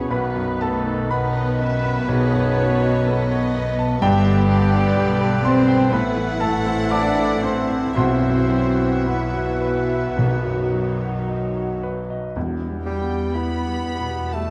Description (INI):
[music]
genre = classical, romantic movement for piano and orchestra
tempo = 54-63 BPM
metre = 4/4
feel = rubato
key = E minor from 4.0 s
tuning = A4 = 440 Hz
[part]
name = clear grand piano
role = melody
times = 0.0-14.5 s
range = B1 to D#6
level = -26 LUFS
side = equal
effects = none
[part]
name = warm chamber violin section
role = melody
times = 0.0-14.5 s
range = B4 to B5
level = -37 LUFS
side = equal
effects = none
[part]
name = concert flute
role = second line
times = 0.0-12.0 s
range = E5 to B5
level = -36 LUFS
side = equal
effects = none
[part]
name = dark clarinet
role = second line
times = 0.0-12.0 s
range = F#4 to C#5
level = -32 LUFS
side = equal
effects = none
[part]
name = warm chamber violin section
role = second line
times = 0.0-14.5 s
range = G4 to B5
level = -37 LUFS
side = equal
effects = none
[part]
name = warm oboe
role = second line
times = 0.0-11.3 s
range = G4 to D5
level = -34 LUFS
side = equal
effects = none
[part]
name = clear bassoon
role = accompaniment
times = 0.0-14.5 s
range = D3 to B3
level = -33 LUFS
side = equal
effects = none
[part]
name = warm chamber viola section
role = accompaniment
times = 0.0-14.5 s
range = F#3 to B4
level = -32 LUFS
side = equal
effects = none
[part]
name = mellow French horn section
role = sustained chords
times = 0.0-11.3 s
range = G3 to D4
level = -30 LUFS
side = equal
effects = none
[part]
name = dark chamber double bass section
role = bass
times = 0.0-14.5 s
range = G1 to E2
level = -27 LUFS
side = equal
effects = none
[part]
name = warm chamber cello section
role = bass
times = 0.0-14.5 s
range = G3 to D4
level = -28 LUFS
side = equal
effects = none
[part]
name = timpani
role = percussion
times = 2.1-13.8 s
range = E2 to B2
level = -30 LUFS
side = equal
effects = none
[sound]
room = moderate recital hall reverb, RT60 1.4 s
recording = dark, warm production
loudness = -20 LUFS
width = mono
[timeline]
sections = 0.0-12.4 A section; 12.4-14.5 B section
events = none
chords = 0.1 B; 2.1 B9; 4.0 G; 5.9 Am; 8.0 Bsus4; 10.2 B; 12.4 Em